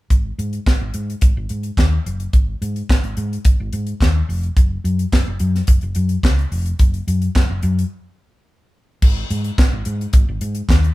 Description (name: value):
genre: disco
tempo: 108 BPM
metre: 4/4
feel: straight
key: unclear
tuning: A4 = 440 Hz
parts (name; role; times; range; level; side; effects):
- hollow-body short-scale fingered electric bass; bass; 0.1-10.9 s; E#1 to G#2; -20 LUFS; left 1 dB; none
- tight funk drum kit; drums; 0.1-10.9 s; crash cymbal, handclaps, hi-hat, kick drum, snare drum; -15 LUFS; equal; none
room: light reverb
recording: band playing live in one room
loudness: -16 LUFS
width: side -18 dB against mid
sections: 0.1-9.0 A section; 9.0-10.9 B section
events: break 7.9-9.0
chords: none